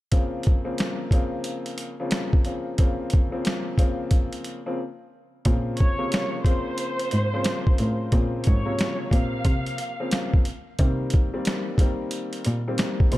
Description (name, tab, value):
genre	hip hop, boom-bap hip-hop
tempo	90 BPM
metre	4/4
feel	swing 63% on 16ths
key	Bb dorian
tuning	A4 = 440 Hz
part	warm upright piano	accompaniment	0.1-13.2 s	C3 to C5	-29 LUFS	left 2 dB	high-pass filter, low-pass filter
part	boom bap sampler-style drum kit	drums	0.1-13.2 s	hi-hat, kick drum, snare drum	-22 LUFS	equal	none
part	muted cello	bass	5.5-13.2 s	Ab2 to C3	-26 LUFS	equal	none
part	warm studio violin section	melody	5.8-10.3 s	C5 to F5	-30 LUFS	equal	high-pass filter, low-pass filter, analog delay
room	small room ambience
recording	dark, warm production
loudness	-22 LUFS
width	side -17 dB against mid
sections	0.1-5.5 A section; 5.5-13.2 B section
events	break 4.8-5.5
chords	0.1 Bbmadd9; 10.8 Cm7